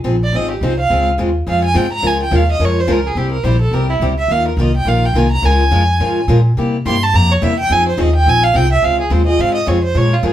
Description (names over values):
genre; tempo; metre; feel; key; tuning
acoustic string swing (jazz manouche); 212 BPM; 4/4; swing 59% on 8ths; unclear; A4 = 440 Hz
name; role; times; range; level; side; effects
picked steel-string acoustic guitar; accompaniment; 0.0-10.3 s; C3 to Bb4; -18 LUFS; left 2 dB; none
upright bass; bass; 0.0-10.3 s; Ab1 to C3; -16 LUFS; equal; none
warm violin; melody; 0.2-10.3 s; E4 to C6; -17 LUFS; right 2 dB; none
room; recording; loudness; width
moderate studio reverb, RT60 0.6 s; band playing live in one room; -12 LUFS; side -12 dB against mid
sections
0.0-8.8 A section; 8.8-10.3 A section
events
violin solo 0.0-10.3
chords
0.0 Fm7; 0.9 Dbmaj7; 2.0 Bbm7/Db; 3.2 C; 4.3 Ebsus2; 5.4 Bbm7; 6.6 C7; 7.7 Fm7; 8.8 Dbmaj7